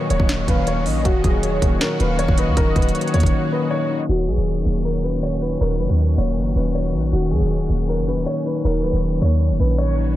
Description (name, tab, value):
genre	hip hop, trap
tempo	158 BPM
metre	4/4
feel	half-time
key	Eb minor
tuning	A4 = 442 Hz
part	dark concert grand piano	melody	0.0-9.9 s	Gb4 to Db5	-25 LUFS	equal	tape echo
part	warm velvety synth lead	second line	0.0-4.1 s	Db5 to F5	-30 LUFS	right 2 dB	chorus, phaser, tape echo
part	mellow tine electric piano	accompaniment	0.0-10.2 s	Eb3 to Eb4	-24 LUFS	left 4 dB	none
part	muted studio string section	sustained chords	0.0-10.1 s	Bb2 to Gb4	-30 LUFS	right 1 dB	none
part	warm 808-style bass	bass	0.1-10.1 s	Db1 to Eb2	-20 LUFS	equal	none
part	trap drum kit	drums	0.1-3.3 s	hi-hat, kick drum, snare drum	-21 LUFS	equal	none
room	moderate huge ambient reverb, RT60 8.0 s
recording	dreamy mix soaked in reverb, low-pass filter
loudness	-17 LUFS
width	side -14 dB against mid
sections	0.0-4.1 A section; 4.1-10.2 B section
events	break 3.3-4.1; filter sweep 4.1-10.2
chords	0.0 Ebm7